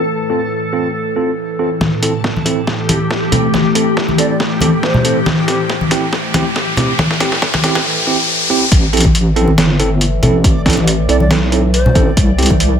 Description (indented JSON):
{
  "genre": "deep dubstep",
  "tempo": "139 BPM",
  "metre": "4/4",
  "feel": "swing 54% on 16ths, half-time",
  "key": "A minor",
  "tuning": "A4 = 439 Hz",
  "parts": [
    { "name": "overtone-sweeping drone", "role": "sustained chords", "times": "0.0-12.8 s", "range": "A2 to E3", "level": "-21 LUFS", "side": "left 1 dB", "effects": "chorus, built-in reverb" },
    { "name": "backwards swelling texture", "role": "texture", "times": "0.0-12.8 s", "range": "G4 to D5", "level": "-24 LUFS", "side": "left 2 dB", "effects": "built-in reverb" },
    { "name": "bell-like tine electric piano", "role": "stabs", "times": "0.3-12.5 s", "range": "C4 to A4", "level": "-19 LUFS", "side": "right 3 dB", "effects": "fast stereo tremolo, low-pass filter, dub echo" },
    { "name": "electronic kick drum", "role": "drums", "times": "1.8-12.6 s", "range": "none", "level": "-16 LUFS", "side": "equal", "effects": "overdrive, high-pass filter on kick, small room reverb, high-pass filter on room" },
    { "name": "trip hop sampler-style drum kit", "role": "drums", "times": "1.8-12.7 s", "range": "hi-hat, snare drum", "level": "-18 LUFS", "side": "equal", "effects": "overdrive, high-pass filter on snare, small room reverb, high-pass filter on hats" },
    { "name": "congas", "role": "percussion", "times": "1.8-12.6 s", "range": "none", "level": "-18 LUFS", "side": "left 1 dB", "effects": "dub echo" },
    { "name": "riser", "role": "sound effects", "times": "3.7-8.7 s", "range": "none", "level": "-20 LUFS", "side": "left 1 dB", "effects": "none" },
    { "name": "breathy bright low ney", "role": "melody", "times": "4.2-5.2, 11.1-12.1 s", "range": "C5 to D5", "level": "-22 LUFS", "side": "right 1 dB", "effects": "low-pass filter, dub echo" },
    { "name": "deep soft wobble bass", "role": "bass", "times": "8.7-12.8 s", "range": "G1 to C2", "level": "-14 LUFS", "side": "equal", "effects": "chorus" }
  ],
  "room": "light reverb",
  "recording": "none",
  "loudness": "-11 LUFS",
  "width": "side -8 dB against mid",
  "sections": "0.0-1.8 A section; 1.8-8.7 B section; 8.7-12.8 C section",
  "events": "build-up 1.8-8.7; drum fill 1.8-7.9; riser 3.7-8.7; drop 8.7-12.8",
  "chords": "0.0 F; 1.8 Am; 12.2 C"
}